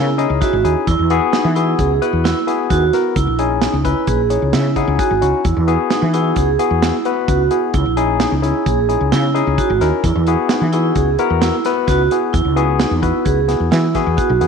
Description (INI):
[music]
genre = progressive instrumental, band music in an uneven meter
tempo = 131 BPM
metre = 5/4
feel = straight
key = E lydian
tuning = A4 = 439 Hz
[part]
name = barky tine electric piano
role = accompaniment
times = 0.0-14.5 s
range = B3 to G#5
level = -19 LUFS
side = left 10 dB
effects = none
[part]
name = vibraphone with medium mallets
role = arpeggios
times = 0.0-14.4 s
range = D#4 to G#4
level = -19 LUFS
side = right 9 dB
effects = none
[part]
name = woody fretless electric bass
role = bass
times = 0.0-14.5 s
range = G#1 to E3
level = -18 LUFS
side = left 1 dB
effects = analog chorus
[part]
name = modern studio drum kit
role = drums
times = 0.2-14.5 s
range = hi-hat, kick drum, snare drum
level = -22 LUFS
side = right 3 dB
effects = none
[sound]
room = moderate echo chamber reverb, RT60 1.4 s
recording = 1960s-style stereo with parts hard left and right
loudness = -14 LUFS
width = side -6 dB against mid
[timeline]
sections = 0.0-14.5 A section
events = tine electric piano fill 0.0-0.9, 4.1-5.5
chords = 0.0 C#madd9; 0.9 Eadd9; 3.2 C#madd9; 5.5 Eadd9; 7.7 C#madd9; 10.0 Eadd9